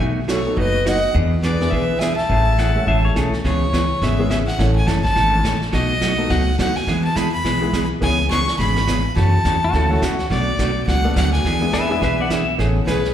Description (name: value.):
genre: country, western swing.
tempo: 210 BPM.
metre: 4/4.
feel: swing 60% on 8ths.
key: A major.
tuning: A4 = 442 Hz.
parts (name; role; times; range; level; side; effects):
vintage hollow-body jazz guitar; accompaniment; 0.0-13.0 s; B2 to A4; -22 LUFS; right 2 dB; slapback echo.
upright bass; bass; 0.0-13.1 s; F#1 to F#2; -20 LUFS; equal; none.
vintage brush drum kit; drums; 0.0-13.1 s; brushed snare drum, hi-hat, kick drum, snare drum; -27 LUFS; equal; none.
clear fiddle; melody; 0.3-13.1 s; B4 to C#6; -23 LUFS; left 1 dB; slapback echo.
breathy clarinet; second line; 0.3-3.1, 12.9-13.1 s; G#4 to E5; -23 LUFS; left 1 dB; slapback echo.
clear upright piano; accompaniment; 0.5-13.1 s; E3 to B4; -25 LUFS; left 2 dB; slapback echo.
pedal steel guitar; second line; 2.6-3.4, 9.6-12.5 s; F#4 to F#5; -24 LUFS; left 3 dB; slapback echo.
room: light reverb, small room ambience.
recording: live gig heard through the venue's PA, recital hall reverb.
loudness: -16 LUFS.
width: side -10 dB against mid.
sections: 0.0-3.4 A section; 3.4-12.6 B section.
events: none.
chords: 0.0 B7; 1.1 E7; 2.3 Amaj7; 3.4 C#m7; 4.6 A; 5.7 B7; 6.9 E; 8.0 C#m7; 9.2 F#m7; 10.3 Bm7; 11.4 E7; 12.6 Amaj9.